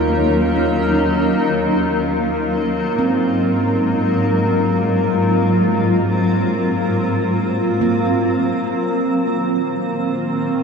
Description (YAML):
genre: ambient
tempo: free time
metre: none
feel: none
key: unclear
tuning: A4 = 439 Hz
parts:
  - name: granular cloud pad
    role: sustained chords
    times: 0.0-10.6 s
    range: Eb3 to Bb4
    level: -17 LUFS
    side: left 1 dB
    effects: built-in reverb
  - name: handpan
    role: arpeggios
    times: 0.0-9.2 s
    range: Bb3 to F4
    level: -25 LUFS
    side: right 4 dB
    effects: diffuse ambient delay
  - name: dark symphonic cello section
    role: bass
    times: 0.0-10.6 s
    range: Eb2 to Bb2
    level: -23 LUFS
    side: equal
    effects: tube saturation
  - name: bowed-like drone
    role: drone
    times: 0.0-10.6 s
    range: Bb3 to F4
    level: -26 LUFS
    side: left 1 dB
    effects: built-in reverb
room: wet cathedral reverb, RT60 5.2 s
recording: dark, warm production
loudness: -15 LUFS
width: side -5 dB against mid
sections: 0.0-8.8 A section; 8.8-10.6 B section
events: none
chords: 0.0 Ebm7; 3.0 Ab13; 8.8 Ab7/Bb (rootless)